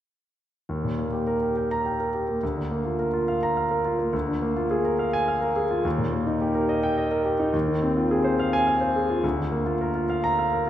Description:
classical, virtuoso piano study; 105 BPM; 3/4; rubato; Eb major; A4 = 440 Hz
warm concert grand piano; solo; 0.7-10.7 s; D2 to Bb5; -22 LUFS; equal
wet recital hall reverb, RT60 1.5 s; heard from further back in the room; -22 LUFS; side -11 dB against mid
0.7-10.7 A section
0.7 Eb; 2.4 Bb/D; 4.1 Bb7/D; 5.8 Eb; 7.5 Fm7/Eb; 9.2 Bb/D
| 0.69 1.27 1.85 | 2.42 2.99 3.56 | 4.14 4.71 5.28 | 5.85 6.41 6.97 | 7.54 8.10 8.66 | 9.23 9.80 10.38

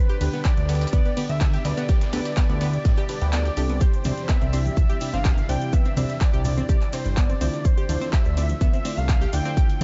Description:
progressive house; 125 BPM; 4/4; straight; C major; A4 = 440 Hz
expressive portamento lead; melody; 0.0-9.8 s; B4 to G5; -36 LUFS; equal; ensemble chorus, sidechain pumping, dub echo
soft synth bell; second line; 0.0-9.8 s; B4 to G5; -42 LUFS; equal
lush unison pad; sustained chords; 0.0-9.8 s; B2 to G4; -39 LUFS; equal
deep mellow chord stab; stabs; 0.0-9.8 s; C3 to D5; -34 LUFS; equal; chorus, sidechain pumping
analog pluck; arpeggios; 0.1-9.8 s; B3 to G5; -36 LUFS; equal; chorus, sidechain pumping, dub echo
big-room dance drum kit; drums; 0.1-9.8 s; handclaps, hi-hat, ride cymbal; -38 LUFS; equal
fat analog bass; bass; 0.2-9.8 s; G1 to D2; -27 LUFS; equal; sidechain pumping
dusty soul sampler-style drum kit; drums; 0.2-9.8 s; hi-hat, shaker, snare drum; -43 LUFS; equal
electronic kick drum; drums; 0.5-9.7 s; -22 LUFS; equal
cabasa; percussion; 3.8-9.8 s; -48 LUFS; equal
congas; percussion; 4.1-9.8 s; -36 LUFS; equal
little or no reverb; dark, warm production, nothing above 7.7 kHz; -22 LUFS; mono
0.0-9.8 A section
kick drops out 3.3-3.8
0.0 G/D; 3.8 Cadd9; 7.7 Dmadd9
0.45 0.93 1.41 | 1.89 2.37 2.85 3.33 | 3.81 4.29 4.77 5.25 | 5.73 6.21 6.69 7.17 | 7.65 8.13 8.61 9.09 | 9.57

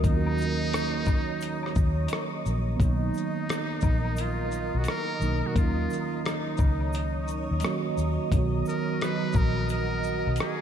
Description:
lo-fi hip hop; 87 BPM; 4/4; swing 65% on 16ths; A4 = 440 Hz
mellow tine electric piano; accompaniment; 0.0-10.6 s; B2 to Gb4; -31 LUFS; right 5 dB; cassette tape, low-pass filter
granular cloud pad; sustained chords; 0.0-10.6 s; F#4 to D#6; -34 LUFS; right 1 dB; built-in reverb, low-pass filter
vintage muted fingered electric bass; bass; 0.0-10.4 s; Bb1 to Eb2; -29 LUFS; left 1 dB
dusty soul sampler-style drum kit; drums; 0.0-10.6 s; hi-hat, kick drum, rim click, shaker; -28 LUFS; left 1 dB
tube shaker and woodblock; percussion; 0.0-10.6 s; -45 LUFS; left 6 dB
trumpet with metal mute; melody; 0.1-10.6 s; Eb4 to B4; -34 LUFS; left 1 dB; low-pass filter, analog delay
moderate lush hall reverb, RT60 2.5 s; dreamy mix soaked in reverb; -24 LUFS; side -9 dB against mid
0.0-2.8 A section; 2.8-10.6 B section
0.0 Ebm7; 2.8 Bmaj7; 5.6 Ebm7; 8.3 Bmaj7
| 0.04 0.73 1.42 2.11 | 2.80 3.49 4.18 4.87 | 5.56 6.25 6.94 7.63 | 8.32 9.01 9.70 10.39

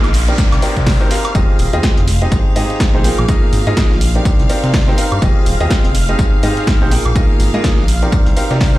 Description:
piano house; 124 BPM; 4/4; swing 58% on 16ths; F dorian; A4 = 439 Hz
string machine, violins; sustained chords; 0.0-8.8 s; F5; -26 LUFS; left 1 dB; ensemble chorus, sidechain pumping
warm concert grand piano; riff; 0.0-8.8 s; Bb3 to G5; -19 LUFS; equal; sidechain pumping, digital delay
fat analog bass; bass; 0.0-8.8 s; Eb1 to C3; -16 LUFS; equal; sidechain pumping
dusty soul sampler-style drum kit; drums; 0.0-8.8 s; hi-hat, snare drum, tambourine; -31 LUFS; left 2 dB; high-pass filter on snare, sidechain pumping on perc, high-pass filter on perc, sidechain pumping on hats, high-pass filter on hats
punchy analog drum machine; drums; 0.0-8.7 s; hi-hat, snare drum, woodblock; -23 LUFS; equal; overdrive
noise sweep; sound effects; 0.0-1.4 s; -26 LUFS; left 1 dB
electronic kick drum; drums; 0.4-8.7 s; -14 LUFS; equal; overdrive
little or no reverb; played on a big sound system in a bare room, stone room reverb; -11 LUFS; side -16 dB against mid
0.0-8.8 A section
noise sweep 0.0-1.4
0.4 Cm9; 1.4 Fm9; 2.3 Abmaj7; 3.0 Bb7sus4; 4.3 Cm9; 5.2 Fm9; 6.2 Abmaj7; 6.9 Bb7sus4; 8.1 Cm9
0.38 0.87 | 1.35 1.83 2.32 2.80 | 3.29 3.77 4.25 4.74 | 5.22 5.70 6.19 6.67 | 7.16 7.64 8.12 8.61

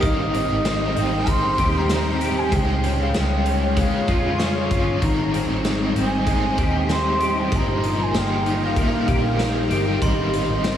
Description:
dream pop; 96 BPM; 4/4; straight; Ab major; A4 = 440 Hz
mellow bansuri; melody; 0.0-10.8 s; Eb5 to C6; -27 LUFS; right 2 dB; slapback echo, digital delay
biting overdriven guitar; accompaniment; 0.0-10.8 s; G2 to F4; -27 LUFS; right 1 dB; tremolo, ensemble chorus, slapback echo
shimmering ambient pad; sustained chords; 0.0-10.8 s; Eb4 to G5; -30 LUFS; equal; chorus, built-in reverb
electric guitar through a small old amp; arpeggios; 0.0-10.8 s; Eb3 to G4; -25 LUFS; left 2 dB; ensemble chorus, slapback echo, digital delay
vintage muted fingered electric bass; bass; 0.0-10.8 s; G1 to F2; -25 LUFS; equal
raw garage drum kit; drums; 0.0-10.8 s; hi-hat, kick drum, snare drum; -25 LUFS; equal
glockenspiel with hard plastic mallets; texture; 0.0-10.7 s; C6 to F6; -35 LUFS; left 1 dB; digital delay
wet concert hall reverb, RT60 2.1 s; big arena sound; -18 LUFS; side -10 dB against mid
0.0-10.8 A section
0.0 Abmaj7; 2.5 Db; 5.0 Abmaj7; 7.5 Ebadd9/G; 10.0 Abmaj7
| 0.02 0.65 1.27 1.90 | 2.52 3.15 3.77 4.40 | 5.02 5.65 6.27 6.90 | 7.52 8.15 8.77 9.40 | 10.02 10.65

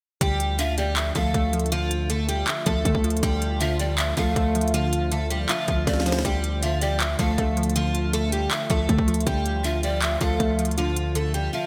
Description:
hip hop, trap; 159 BPM; 4/4; half-time; D minor; A4 = 441 Hz
picked steel-string acoustic guitar; melody; 0.2-11.7 s; F3 to A4; -30 LUFS; equal; analog chorus, digital delay
glassy wavetable pluck; accompaniment; 0.2-11.7 s; D3 to A3; -32 LUFS; equal; chorus
warm analog pad; sustained chords; 0.2-11.7 s; D3 to F4; -36 LUFS; equal; chorus
long sustained 808-style bass; bass; 0.2-11.5 s; D2 to D3; -29 LUFS; equal
trap drum kit; drums; 0.2-11.4 s; handclaps, hi-hat, kick drum, snare drum; -28 LUFS; equal
breathy mellow pan flute; second line; 0.6-11.7 s; C5 to F5; -34 LUFS; equal; digital delay
light reverb; bright 1980s-style digital production; -24 LUFS; mono
0.2-11.7 A section
drum fill 5.9-6.2
0.2 Dm
| 0.21 0.59 0.96 1.34 | 1.72 2.10 2.48 2.85 | 3.23 3.61 3.98 4.36 | 4.74 5.12 5.49 5.87 | 6.25 6.63 7.00 7.38 | 7.76 8.13 8.51 8.89 | 9.27 9.64 10.02 10.40 | 10.78 11.15 11.53

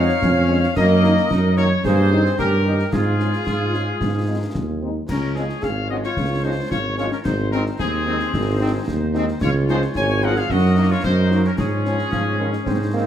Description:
military-style march for wind band; 111 BPM; 2/4; straight; Db major; A4 = 439 Hz
mellow trumpet section; melody; 0.0-13.1 s; Ab4 to Ab5; -26 LUFS; left 2 dB
mellow flute section; second line; 0.0-13.1 s; C4 to Db5; -28 LUFS; left 2 dB
warm woodwind section; second line; 0.0-13.1 s; Eb4 to F5; -29 LUFS; left 2 dB
mellow French horn section; accompaniment; 0.0-13.0 s; Eb3 to F4; -28 LUFS; left 3 dB
bright trombone section; sustained chords; 0.0-13.0 s; Eb3 to F4; -31 LUFS; right 2 dB
dark tuba; bass; 0.0-13.1 s; Ab1 to Ab2; -19 LUFS; right 2 dB
concert snare drum, concert bass drum and clash cymbals; drums; 0.1-13.1 s; -29 LUFS; left 2 dB
warm euphonium; second line; 12.1-13.1 s; Eb3 to C4; -27 LUFS; right 5 dB
moderate large studio reverb, RT60 0.8 s; -17 LUFS; side -10 dB against mid
0.0-5.1 A section; 5.1-13.1 B section
0.0 Db/F; 0.8 Ebm/Gb; 1.8 Eb7/G; 2.9 Db/Ab; 4.0 Ab; 5.1 Db; 7.3 Ab; 9.4 Db; 10.5 Ebm/Gb; 11.6 Db/Ab
0.22 | 0.76 1.30 | 1.84 2.38 | 2.93 3.47 | 4.01 4.55 | 5.09 5.63 | 6.17 6.71 | 7.26 7.80 | 8.34 8.88 | 9.42 9.96 | 10.50 11.04 | 11.59 12.13 | 12.67

